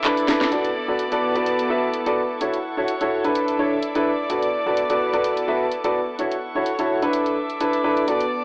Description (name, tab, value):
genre	piano house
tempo	127 BPM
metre	4/4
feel	swing 54% on 16ths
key	B minor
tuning	A4 = 440 Hz
part	dark chamber string section	sustained chords	0.0-8.4 s	A4 to D6	-31 LUFS	equal	none
part	clear concert grand piano	riff	0.0-8.2 s	D4 to E5	-24 LUFS	equal	analog delay
part	house drum kit	drums	0.0-8.3 s	handclaps, hi-hat, shaker, snare drum	-30 LUFS	equal	overdrive
part	warm chamber string section	texture	0.0-8.4 s	B3 to D5	-30 LUFS	equal	none
room	light reverb, small room ambience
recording	dry, gritty hardware recording, transformer saturation, AM radio sound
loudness	-22 LUFS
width	mono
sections	0.5-8.4 A section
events	drum fill 0.3; band accent 0.4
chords	0.0 E7sus4; 0.5 Bm7; 2.4 A6; 3.4 E7sus4; 4.3 Bm7; 6.2 A6; 7.1 E7sus4